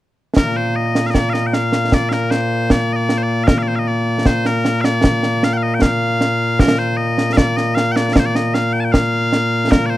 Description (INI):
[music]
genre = scottish traditional, Scottish pipe music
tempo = 77 BPM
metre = 2/4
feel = straight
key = Bb major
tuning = A4 = 436 Hz
[part]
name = loud bright bagpipes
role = melody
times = 0.4-10.0 s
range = Bb2 to A5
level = -16 LUFS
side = left 1 dB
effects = slapback echo
[part]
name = concert snare drum and concert bass drum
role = drums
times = 0.4-9.9 s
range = none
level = -16 LUFS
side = right 1 dB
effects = none
[sound]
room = light reverb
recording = dry, close 1970s-style studio recording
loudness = -14 LUFS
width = side -15 dB against mid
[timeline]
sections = 0.4-10.0 A section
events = none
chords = none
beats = | 0.36 1.14 | 1.92 2.69 | 3.47 4.25 | 5.03 5.81 | 6.59 7.37 | 8.15 8.93 | 9.71